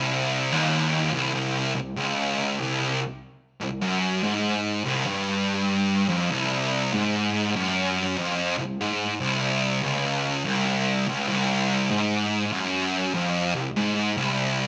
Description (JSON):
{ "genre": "metal", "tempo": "97 BPM", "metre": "4/4", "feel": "swing 65% on 8ths", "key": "C minor", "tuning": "A4 = 441 Hz", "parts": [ { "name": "thick fuzz guitar", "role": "solo", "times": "0.0-14.7 s", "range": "C2 to Ab2", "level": "-25 LUFS", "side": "equal", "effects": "distortion" } ], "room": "moderate large studio reverb, RT60 1.2 s", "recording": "band playing live in one room", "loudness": "-25 LUFS", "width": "mono", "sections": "0.0-6.3 A section; 6.3-14.7 B section", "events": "none", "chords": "none" }